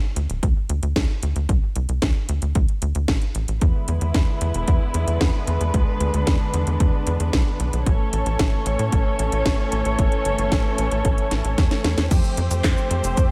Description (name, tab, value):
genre	italo disco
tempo	113 BPM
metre	4/4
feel	straight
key	unclear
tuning	A4 = 441 Hz
part	tight sequencer bass	bass	0.2-13.3 s	D1 to A2	-26 LUFS	equal	none
part	house drum kit	drums	0.2-13.3 s	cabasa, crash cymbal, handclaps, hi-hat, snare drum	-30 LUFS	equal	none
part	electronic kick drum	drums	0.4-13.3 s	none	-23 LUFS	equal	none
part	dark chamber string section	sustained chords	3.6-13.3 s	D3 to C#5	-27 LUFS	equal	none
room	little or no reverb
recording	none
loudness	-21 LUFS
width	mono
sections	0.0-12.1 A section; 12.1-13.3 B section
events	drum fill 11.3-12.1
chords	0.0 D5; 3.6 E7; 7.9 A; 12.1 Fadd9